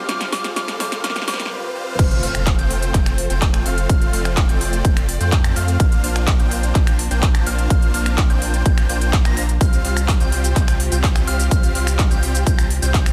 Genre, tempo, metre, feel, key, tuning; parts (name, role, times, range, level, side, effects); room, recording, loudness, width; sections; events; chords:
EDM, festival progressive house; 126 BPM; 4/4; straight; F major; A4 = 443 Hz
soft synth bell; melody; 0.0-1.5 s; D6; -31 LUFS; equal; chorus, dub echo
felt-muted upright piano; accompaniment; 0.0-2.0 s; C3 to C5; -37 LUFS; equal; sidechain pumping, dub echo
clear symphonic string section; sustained chords; 0.0-13.1 s; C3 to D5; -34 LUFS; equal; sidechain pumping
plucky unison lead; arpeggios; 0.0-13.1 s; F6 to Bb6; -32 LUFS; equal; sidechain pumping, dub echo
supersaw chords; riff; 0.0-13.1 s; G3 to Bb5; -29 LUFS; equal; sidechain pumping, dub echo
saturated sub bass; bass; 0.0-13.1 s; F1 to F2; -24 LUFS; equal; sidechain pumping, high-pass filter
riser and impact; sound effects; 0.0-3.9 s; -30 LUFS; equal
big-room dance drum kit; drums; 0.1-13.1 s; crash cymbal, finger snaps, handclaps, hi-hat, shaker, snare drum; -27 LUFS; equal; overdrive
electronic kick drum; drums; 2.0-13.0 s; -19 LUFS; equal
little or no reverb; dense, heavily limited modern master, high-pass filter; -18 LUFS; mono
0.0-2.0 A section; 2.0-13.1 B section
build-up 0.0-2.0; drum fill 0.0-1.5; riser 0.0-2.0; drop 2.0-13.1; impact 2.0-3.9
0.0 Dm; 2.0 F; 5.8 Bbadd9; 9.6 Csus4